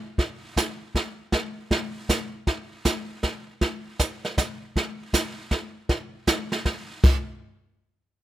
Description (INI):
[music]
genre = jazz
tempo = 157 BPM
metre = 3/4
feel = swing 65% on 8ths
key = none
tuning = none
[part]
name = jazz brush drum kit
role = drums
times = 0.2-7.4 s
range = brushed snare drum, crash cymbal, hi-hat, kick drum, snare drum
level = -22 LUFS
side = right 1 dB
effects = none
[sound]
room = little or no reverb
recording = close, detailed microphones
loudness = -24 LUFS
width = side -14 dB against mid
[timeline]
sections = 0.0-7.0 A section; 7.0-8.2 B section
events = none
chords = none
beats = | 0.18 0.56 0.94 | 1.32 1.71 2.09 | 2.47 2.85 3.23 | 3.61 3.99 4.38 | 4.76 5.14 5.52 | 5.90 6.28 6.66 | 7.04 7.42